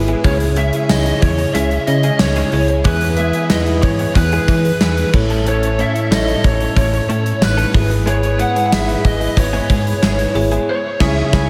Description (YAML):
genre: 1980s-style pop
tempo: 92 BPM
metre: 4/4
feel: straight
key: E major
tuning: A4 = 439 Hz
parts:
  - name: bell-like tine electric piano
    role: accompaniment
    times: 0.0-11.5 s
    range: G#2 to C#5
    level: -22 LUFS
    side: equal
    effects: none
  - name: phased string machine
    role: sustained chords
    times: 0.0-11.5 s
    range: C#3 to B4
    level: -31 LUFS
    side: equal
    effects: none
  - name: slap-like FM bass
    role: bass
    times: 0.0-11.5 s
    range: G#1 to E3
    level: -21 LUFS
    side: equal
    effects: none
  - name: direct-recorded clean electric guitar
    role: riff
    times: 0.1-11.5 s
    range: G#3 to A4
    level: -29 LUFS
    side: equal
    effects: analog chorus
  - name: gated 80s drum kit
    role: drums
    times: 0.1-11.5 s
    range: crash cymbal, hi-hat, kick drum, snare drum, tambourine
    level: -20 LUFS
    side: equal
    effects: none
  - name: biting lead guitar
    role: melody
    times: 0.2-11.5 s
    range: B4 to F#5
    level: -23 LUFS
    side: equal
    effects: overdrive
  - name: mellow horn section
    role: stabs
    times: 2.9-11.5 s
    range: B3 to C#5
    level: -31 LUFS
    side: equal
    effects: tape echo, slapback echo
room: moderate lush hall reverb, RT60 2.4 s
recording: big arena sound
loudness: -16 LUFS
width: mono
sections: 0.0-11.5 A section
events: band accent 10.7-11.5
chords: 0.2 C#m; 2.9 E; 5.1 A; 7.7 E/G#; 10.7 C#m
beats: | 0.24 0.90 1.55 2.20 | 2.85 3.51 4.16 4.81 | 5.46 6.11 6.77 7.42 | 8.07 8.72 9.38 10.03 | 10.68 11.33